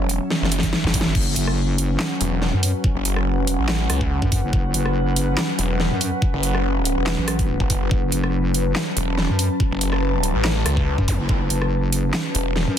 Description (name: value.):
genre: heavy wobble dubstep.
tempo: 142 BPM.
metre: 4/4.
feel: swing 54% on 16ths, half-time.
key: F# minor.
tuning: A4 = 442 Hz.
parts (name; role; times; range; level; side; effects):
evolving wavetable pad; sustained chords; 0.0-12.8 s; F#3 to A5; -25 LUFS; left 1 dB; chorus, built-in reverb, sidechain pumping.
snarling distorted saw bass; bass; 0.0-12.7 s; E1 to C#2; -22 LUFS; equal; distortion, overdrive.
dubstep drum kit; drums; 0.1-12.7 s; crash cymbal, handclaps, hi-hat, rim click, snare drum; -24 LUFS; right 1 dB; overdrive.
electronic kick drum; drums; 0.6-11.4 s; none; -22 LUFS; equal; overdrive.
wobble bass; bass; 1.1-12.8 s; F#1 to F#2; -22 LUFS; equal; chorus, overdrive.
zap; sound effects; 11.1-11.2 s; none; -32 LUFS; equal; none.
room: light reverb.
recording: dense, heavily limited modern master.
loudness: -18 LUFS.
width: side -9 dB against mid.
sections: 0.0-12.8 A section.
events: drum fill 0.3-1.1.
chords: 0.0 F#5.